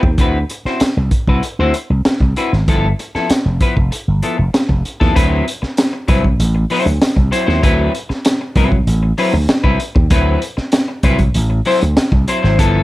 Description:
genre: funk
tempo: 97 BPM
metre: 4/4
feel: straight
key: D mixolydian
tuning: A4 = 441 Hz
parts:
  - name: clean electric guitar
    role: accompaniment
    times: 0.0-12.8 s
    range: F3 to C5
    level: -17 LUFS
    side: left 2 dB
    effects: wide subtle chorus
  - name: slap bass with an envelope filter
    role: bass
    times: 0.0-12.8 s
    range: F1 to Eb2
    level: -15 LUFS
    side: equal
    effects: none
  - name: crunchy breakbeat drum kit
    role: drums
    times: 0.0-12.7 s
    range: hi-hat, kick drum, snare drum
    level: -16 LUFS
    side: equal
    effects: none
room: light reverb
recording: none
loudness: -13 LUFS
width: side -17 dB against mid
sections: 0.0-5.2 A section; 5.2-12.8 B section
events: none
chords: 0.0 D13; 2.7 G13; 5.2 D13

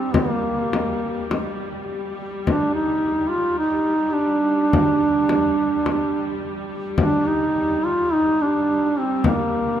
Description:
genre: caucasian folk, Caucasian lament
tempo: 53 BPM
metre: 4/4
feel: rubato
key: G minor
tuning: A4 = 440 Hz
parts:
  - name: mellow duduk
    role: melody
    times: 0.0-9.8 s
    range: Bb3 to F4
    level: -20 LUFS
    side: right 1 dB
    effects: none
  - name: rich studio string section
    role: drone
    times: 0.0-9.8 s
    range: G3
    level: -29 LUFS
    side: left 2 dB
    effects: none
  - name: frame drum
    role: percussion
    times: 0.1-9.5 s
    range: none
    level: -25 LUFS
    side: left 2 dB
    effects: none
room: moderate cathedral reverb, RT60 5.3 s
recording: minimal, uncompressed stereo recording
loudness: -18 LUFS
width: side -10 dB against mid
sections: 0.0-9.8 A section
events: none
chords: none

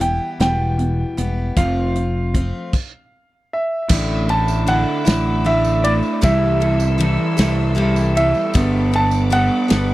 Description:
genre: folk rock and heartland rock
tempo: 52 BPM (dotted quarters)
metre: 6/8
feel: straight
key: unclear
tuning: A4 = 441 Hz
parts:
  - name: clear concert grand piano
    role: melody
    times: 0.0-9.9 s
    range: D5 to A5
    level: -22 LUFS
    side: right 1 dB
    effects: tape echo
  - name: picked steel-string acoustic guitar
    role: accompaniment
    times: 0.0-9.9 s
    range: E2 to A4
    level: -24 LUFS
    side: left 2 dB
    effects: none
  - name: electric guitar through a small old amp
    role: riff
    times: 0.0-9.9 s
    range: E2 to A4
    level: -22 LUFS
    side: right 3 dB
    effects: spring reverb
  - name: fingered electric bass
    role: bass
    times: 0.0-9.9 s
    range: E1 to C2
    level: -19 LUFS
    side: equal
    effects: none
  - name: natural country drum kit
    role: drums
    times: 0.0-9.9 s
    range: crash cymbal, hi-hat, kick drum, ride cymbal, snare drum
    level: -19 LUFS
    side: equal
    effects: none
  - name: clear studio string section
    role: sustained chords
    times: 3.9-9.9 s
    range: G4 to E6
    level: -33 LUFS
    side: left 3 dB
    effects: none
  - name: tambourine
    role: percussion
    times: 3.9-9.9 s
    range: none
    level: -36 LUFS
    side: right 11 dB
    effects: none
room: little or no reverb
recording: dry, close 1970s-style studio recording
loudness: -15 LUFS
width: side -16 dB against mid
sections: 0.0-3.9 A section; 3.9-9.9 B section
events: stop 2.7-3.9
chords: 0.0 Em; 1.6 F; 2.7 N.C.; 3.9 Asus4; 6.2 C6; 8.5 Gadd9

